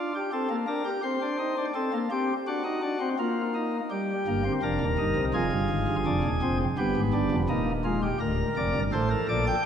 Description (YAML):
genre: classical, baroque-style 4-part fugue for pipe organ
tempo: 84 BPM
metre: 3/4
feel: straight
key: unclear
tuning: A4 = 439 Hz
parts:
  - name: pipe organ, sparkling flutes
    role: solo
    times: 0.0-9.6 s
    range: D1 to G5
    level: -25 LUFS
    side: equal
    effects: none
room: wet church reverb, RT60 2.8 s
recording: none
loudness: -25 LUFS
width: side -8 dB against mid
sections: 0.0-9.7 A section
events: none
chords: 0.0 Gm/D; 1.0 Cm; 1.8 D7; 3.2 Bbsus4; 3.9 Cm/G; 5.3 Fm; 6.1 G7; 7.5 Ebadd11; 8.2 Gm/D